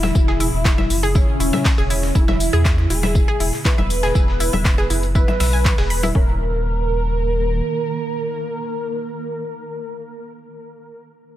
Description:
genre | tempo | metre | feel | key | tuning
melodic techno | 120 BPM | 4/4 | straight | unclear | A4 = 440 Hz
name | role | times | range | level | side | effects
wide unison lead | melody | 0.0-10.3 s | Db4 to B4 | -24 LUFS | equal | wide subtle chorus, sidechain pumping, tape echo
wide unison pluck | arpeggios | 0.0-6.4 s | Db4 to B5 | -26 LUFS | equal | sidechain pumping, dub echo
round analog bass | bass | 0.0-7.6 s | Eb1 to E2 | -21 LUFS | equal | sidechain pumping
swarming drone | drone | 0.0-10.3 s | Bb2 to Bb3 | -31 LUFS | right 2 dB | built-in reverb, sidechain pumping
deep house drum kit | drums | 0.0-6.1 s | congas, handclaps, hi-hat, shaker | -24 LUFS | left 2 dB | small room ambience
dusty soul sampler-style drum kit | drums | 0.0-6.1 s | hi-hat, snare drum, tambourine | -33 LUFS | left 1 dB | high-pass filter on snare, small room ambience, sidechain pumping on perc, high-pass filter on perc, sidechain pumping on hats, high-pass filter on hats, high-pass filter on room
electronic kick drum | drums | 0.2-6.3 s | none | -17 LUFS | equal | small room ambience
room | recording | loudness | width
little or no reverb | none | -16 LUFS | side -13 dB against mid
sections
0.0-6.2 A section; 6.2-10.2 B section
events
drop 0.0-6.2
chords
0.0 E; 6.2 Eb5

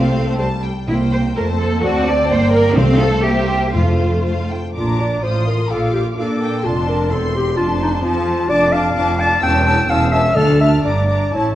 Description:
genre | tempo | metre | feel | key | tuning
quick classical-period movement for symphony orchestra | 117-132 BPM | 2/4 | rubato | F major, Bb major from 4.8 s, D minor from 8.5 s | A4 = 439 Hz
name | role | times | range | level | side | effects
rich studio violin section | melody | 0.0-11.6 s | E5 to F6 | -28 LUFS | left 4 dB | none
rich studio violin section | second line | 0.0-11.6 s | C5 to C6 | -25 LUFS | left 2 dB | none
rich studio viola section | accompaniment | 0.0-11.6 s | G3 to F4 | -22 LUFS | right 1 dB | none
bright studio cello section | bass | 0.0-11.6 s | D2 to D5 | -20 LUFS | right 1 dB | none
warm studio double bass section | bass | 0.0-11.6 s | E1 to Bb2 | -21 LUFS | right 1 dB | none
timpani | percussion | 0.0-4.5, 10.4-10.8 s | F2 to D3 | -22 LUFS | equal | none
warm clarinet | second line | 4.8-11.6 s | Eb4 to A5 | -18 LUFS | left 1 dB | none
room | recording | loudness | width
wet scoring stage reverb, RT60 1.7 s | worn, warbling old tape, cassette tape, warbly pitch drift | -14 LUFS | side -13 dB against mid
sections
0.0-4.8 A section; 4.8-11.6 B section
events
none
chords
0.4 C5; 0.9 C7; 1.4 F; 1.8 D7; 2.3 Gm; 2.8 F/C; 3.2 C7; 3.7 F; 4.8 Bb; 5.2 F7/A; 5.7 Bb; 6.6 F; 7.1 C/E; 7.6 F; 8.5 Dm/F; 9.4 A7/E; 10.4 Dm; 10.8 Gm

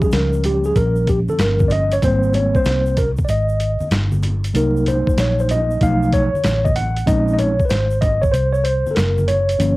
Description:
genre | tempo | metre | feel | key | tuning
hip hop, jazz-hop | 95 BPM | 4/4 | swing 66% on 16ths | unclear | A4 = 441 Hz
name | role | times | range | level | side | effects
mellow tine electric piano | accompaniment | 0.0-9.8 s | F3 to F#5 | -18 LUFS | equal | medium stereo tremolo, cassette tape
vintage muted fingered electric bass | bass | 0.0-9.8 s | Gb1 to Db2 | -19 LUFS | equal | none
boom bap sampler-style drum kit | drums | 0.0-9.8 s | hi-hat, kick drum, snare drum | -20 LUFS | equal | none
tube shaker and congas | percussion | 0.0-9.8 s | none | -29 LUFS | equal | none
room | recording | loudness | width
light reverb | home recording on cassette, vinyl crackle | -15 LUFS | side -20 dB against mid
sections
0.0-9.8 A section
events
tine electric piano solo 0.0-9.8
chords
0.0 Eb9 (rootless); 2.0 Abmaj9; 4.5 Cm7b5; 5.8 B7#11; 7.1 Bbm11

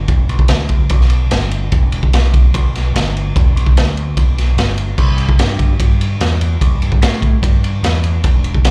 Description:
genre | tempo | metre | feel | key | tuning
garage rock duo or trio | 147 BPM | 4/4 | straight | unclear | A4 = 440 Hz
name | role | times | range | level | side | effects
overdriven picked electric bass | bass | 0.1-8.7 s | E1 to A2 | -18 LUFS | equal | none
raw garage drum kit | drums | 0.1-8.7 s | crash cymbal, kick drum, ride cymbal, snare drum | -16 LUFS | equal | none
room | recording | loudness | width
little or no reverb | live gig heard through the venue's PA, club reverb | -14 LUFS | mono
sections
0.0-8.7 A section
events
none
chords
none

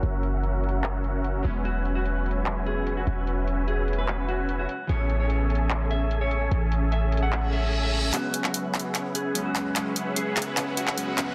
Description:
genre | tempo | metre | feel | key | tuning
future bass | 148 BPM | 4/4 | half-time | E major | A4 = 442 Hz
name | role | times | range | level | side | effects
glassy digital keys | accompaniment | 0.0-11.3 s | E3 to C#4 | -37 LUFS | equal | chorus, digital delay
dense compressed supersaw | riff | 0.0-11.3 s | C#4 to G#5 | -33 LUFS | equal | low-pass filter
warm 808-style bass | bass | 0.0-11.3 s | E1 to A1 | -28 LUFS | equal | high-pass filter
big-room dance drum kit | drums | 0.0-11.3 s | handclaps, hi-hat | -32 LUFS | equal | soft clipping on snare, low-pass filter on snare, low-pass filter on hats
mellow electric guitar | melody | 1.7-11.3 s | F#4 to F#5 | -36 LUFS | equal | vintage 12-bit sampler grit, dub echo
reverse cymbal and riser | sound effects | 7.5-11.3 s | none | -37 LUFS | equal | none
room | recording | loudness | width
light reverb, digital ambience | dense, heavily limited modern master | -26 LUFS | mono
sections
0.0-8.1 A section; 8.1-11.3 B section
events
reverse cymbal 7.5-8.1; build-up 8.1-11.3; drum fill 8.1-11.3; filter sweep on supersaw synth 8.1-11.3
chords
0.0 F#7; 1.4 E69; 4.9 Amaj7; 8.1 E69

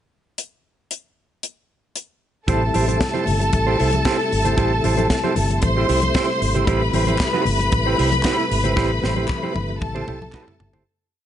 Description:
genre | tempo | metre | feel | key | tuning
disco | 114 BPM | 4/4 | straight | unclear | A4 = 441 Hz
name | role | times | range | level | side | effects
tight funk drum kit | drums | 0.4-10.9 s | hi-hat, kick drum, snare drum, toms | -24 LUFS | left 1 dB | none
clear studio string section | second line | 2.5-10.8 s | A4 to C6 | -23 LUFS | left 1 dB | none
mellow electric guitar | accompaniment | 2.5-10.8 s | E4 to C5 | -24 LUFS | right 6 dB | none
percussive tonewheel organ | sustained chords | 2.5-10.8 s | C3 to E4 | -26 LUFS | left 1 dB | chorus vibrato, fast rotary speaker
vintage muted fingered electric bass | bass | 2.5-10.8 s | G1 to C2 | -22 LUFS | equal | none
congas | percussion | 2.5-10.9 s | none | -30 LUFS | left 5 dB | none
group handclap | percussion | 7.2-10.5 s | none | -34 LUFS | left 2 dB | none
room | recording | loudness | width
light reverb, studio reverb | nothing above 10.7 kHz | -17 LUFS | side -10 dB against mid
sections
0.4-2.5 pickup bar; 2.5-10.9 pre-chorus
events
fade-out 8.8-10.9; drum fill 8.8-10.9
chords
0.4 N.C.; 2.5 Am7

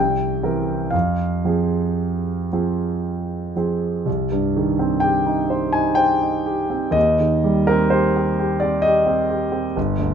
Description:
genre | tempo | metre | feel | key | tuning
classical, romantic nocturne for solo piano | 56-66 BPM | 3/4 | rubato | F minor, C minor from 4.1 s | A4 = 440 Hz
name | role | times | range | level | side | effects
warm concert grand piano | solo | 0.0-10.1 s | G1 to Ab5 | -18 LUFS | right 1 dB | none
room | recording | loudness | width
light reverb | none | -18 LUFS | side -8 dB against mid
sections
0.0-4.1 A section; 4.1-10.1 B section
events
none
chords
0.0 C7; 0.9 Fm; 4.1 Cm; 7.0 Cm/Eb

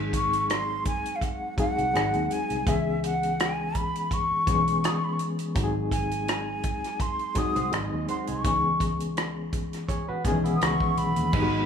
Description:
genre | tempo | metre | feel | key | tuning
lush 1970s-style soul | 83 BPM | 4/4 | swing 54% on 16ths | C# minor | A4 = 439 Hz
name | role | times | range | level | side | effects
barky reed electric piano | accompaniment | 0.0-11.7 s | D#3 to G#4 | -29 LUFS | left 3 dB | overdrive, fast tremolo
vintage muted fingered electric bass | bass | 0.0-11.7 s | G#1 to D#2 | -32 LUFS | right 1 dB | none
breathy hollow jazz flute | melody | 0.1-11.7 s | E5 to D#6 | -28 LUFS | left 1 dB | none
warm soul drum kit | drums | 0.1-11.5 s | crash cymbal, hi-hat, kick drum, rim click | -29 LUFS | right 1 dB | none
electric guitar through a small old amp | riff | 7.4-11.3 s | B3 to D#5 | -35 LUFS | right 5 dB | none
warm studio string section | second line | 11.3-11.7 s | D#4 to D#5 | -34 LUFS | right 5 dB | none
room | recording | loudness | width
light reverb, small room ambience | studio reverb | -24 LUFS | side -7 dB against mid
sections
0.0-11.3 A section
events
none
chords
0.0 G#7; 2.7 C#m7; 5.6 G#7; 8.4 C#m7

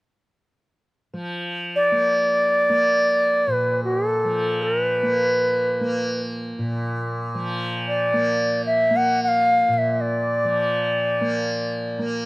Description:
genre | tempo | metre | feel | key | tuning
indian classical | free time | none | none | Bb major | A4 = 439 Hz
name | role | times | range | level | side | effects
tanpura | drone | 1.1-12.3 s | Bb2 to Bb3 | -26 LUFS | equal | none
bright bansuri | melody | 1.8-12.0 s | A4 to Gb5 | -19 LUFS | equal | none
room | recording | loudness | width
light reverb | recorded outdoors, with no room sound | -19 LUFS | side -22 dB against mid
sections
1.1-12.3 A section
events
none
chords
none

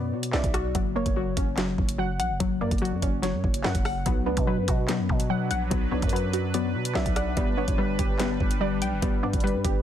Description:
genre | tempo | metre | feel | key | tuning
hip hop, drill | 145 BPM | 4/4 | half-time | B harmonic minor | A4 = 441 Hz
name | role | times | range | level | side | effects
soft round pluck | second line | 0.0-9.8 s | B4 to E5 | -37 LUFS | right 2 dB | chorus, ping-pong delay
warbly dusty pluck | accompaniment | 0.0-9.8 s | B2 to G5 | -30 LUFS | left 3 dB | chorus
warbly dusty pluck | arpeggios | 0.0-9.8 s | F#3 to F#5 | -31 LUFS | left 1 dB | chorus, ping-pong delay
growling 808-style bass | bass | 0.0-9.8 s | F#1 to B2 | -30 LUFS | equal | none
drill drum kit | drums | 0.2-9.7 s | handclaps, hi-hat, kick drum, rim click, snare drum | -27 LUFS | equal | none
sweeping resonant pad | sustained chords | 4.1-9.8 s | F#3 to B4 | -34 LUFS | right 1 dB | chorus
room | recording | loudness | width
little or no reverb | dense, heavily limited modern master | -23 LUFS | side -10 dB against mid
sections
0.0-9.8 A section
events
none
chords
0.0 Bm; 0.7 F#; 4.1 Bm; 7.4 G

